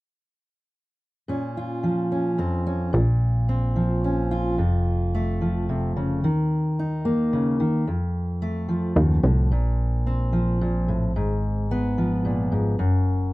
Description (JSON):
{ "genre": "acoustic folk duo or small band", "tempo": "110 BPM", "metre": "3/4", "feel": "straight", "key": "unclear", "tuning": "A4 = 440 Hz", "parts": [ { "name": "fingerpicked steel-string acoustic guitar", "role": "accompaniment", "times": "1.3-13.3 s", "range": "F2 to F4", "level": "-23 LUFS", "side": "equal", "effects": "none" }, { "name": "plucky analog bass", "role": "bass", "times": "2.9-13.3 s", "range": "F1 to F2", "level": "-24 LUFS", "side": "equal", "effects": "none" } ], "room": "light reverb", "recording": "dry, close 1970s-style studio recording", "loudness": "-21 LUFS", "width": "side -20 dB against mid", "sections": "1.3-2.9 A section; 2.9-13.3 B section", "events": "none", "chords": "1.3 Bbmadd9; 4.6 F; 6.2 Eb5; 7.9 F; 9.5 Bbsus2; 11.2 Abm69; 12.8 N.C." }